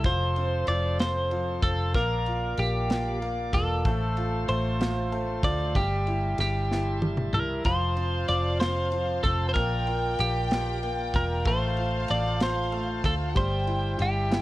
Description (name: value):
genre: six-eight pop ballad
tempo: 63 BPM (dotted quarters)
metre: 6/8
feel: straight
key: F major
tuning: A4 = 443 Hz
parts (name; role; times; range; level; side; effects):
- twelve-string electric guitar; melody; 0.0-14.4 s; G4 to D5; -29 LUFS; equal; none
- clear baby grand piano; accompaniment; 0.0-14.4 s; F3 to F4; -32 LUFS; equal; none
- bright tonewheel organ; sustained chords; 0.0-14.4 s; Bb3 to D6; -39 LUFS; equal; slow rotary speaker
- vintage muted fingered electric bass; bass; 0.0-14.4 s; E1 to D2; -29 LUFS; equal; none
- modern studio drum kit; drums; 0.0-14.4 s; kick drum, ride cymbal, snare drum, toms; -29 LUFS; equal; none
- clear studio violin section; second line; 7.6-14.4 s; F5 to A5; -35 LUFS; left 1 dB; none
room: light reverb, studio ambience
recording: worn, warbling old tape, cassette tape, warbly pitch drift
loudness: -24 LUFS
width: side -16 dB against mid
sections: 0.0-14.4 A section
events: drum fill 6.7-7.7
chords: 0.0 F; 1.9 Bb; 3.8 F/A; 5.8 C6/G; 7.7 F; 9.6 Bb; 11.5 F/A; 13.4 C6/G